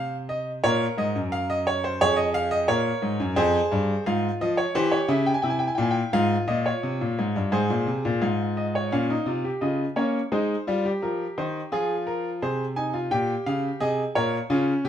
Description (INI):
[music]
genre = classical, baroque-style 3-part fugue for grand piano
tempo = 86 BPM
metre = 4/4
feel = straight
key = Bb minor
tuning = A4 = 440 Hz
[part]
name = bright grand piano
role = solo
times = 0.0-14.9 s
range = F2 to Ab5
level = -22 LUFS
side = equal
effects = none
[sound]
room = moderate stone room reverb, RT60 1.0 s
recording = minimal, uncompressed stereo recording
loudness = -22 LUFS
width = side -9 dB against mid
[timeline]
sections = 0.0-8.9 A section; 8.9-14.9 B section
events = none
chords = 0.0 F7(no3); 0.6 Bbm; 2.0 Bbm/F; 3.4 Fm; 4.7 C7; 6.1 Fm/Ab; 8.9 Bbm; 10.3 Fm; 13.1 Gm7b5/Bb